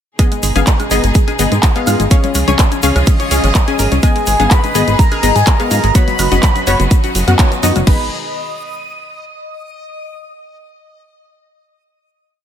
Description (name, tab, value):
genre	progressive house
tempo	125 BPM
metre	4/4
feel	straight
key	G# dorian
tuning	A4 = 440 Hz
part	clear studio string section	sustained chords	0.2-8.1 s	B2 to G#4	-24 LUFS	equal	sidechain pumping
part	analog pluck	arpeggios	0.2-8.1 s	F#3 to C#5	-21 LUFS	right 1 dB	chorus, sidechain pumping, ping-pong delay
part	wide unison pluck	stabs	0.2-8.1 s	B3 to G#5	-19 LUFS	left 4 dB	sidechain pumping, ping-pong delay
part	electronic kick drum	drums	0.2-8.0 s	none	-12 LUFS	equal	none
part	pop drum kit	drums	0.2-8.0 s	crash cymbal, handclaps, hi-hat	-20 LUFS	right 1 dB	sidechain pumping on hats, sidechain pumping on cymbals
part	egg shaker	percussion	0.2-7.8 s	none	-27 LUFS	left 3 dB	none
part	woodblock and congas	percussion	0.2-7.8 s	none	-25 LUFS	left 7 dB	sidechain pumping on perc
part	backwards swelling texture	texture	1.1-7.9 s	D#5 to D#6	-28 LUFS	right 1 dB	built-in reverb, sidechain pumping
part	plucky analog bass	bass	0.4-8.1 s	F#1 to G#2	-15 LUFS	right 1 dB	sidechain pumping
part	warm velvety synth lead	melody	4.0-8.1 s	G#5 to B5	-19 LUFS	equal	chorus, tremolo, ping-pong delay
part	soft synth bell	second line	4.0-8.1 s	G#5 to B5	-28 LUFS	left 2 dB	none
room	light reverb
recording	none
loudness	-10 LUFS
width	side -9 dB against mid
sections	0.2-7.9 drop; 7.9-9.8 final chord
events	drop 0.2-7.9; band accent 7.4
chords	0.2 G#m; 2.1 C#; 4.0 G#m; 6.0 F#sus4; 7.9 G#m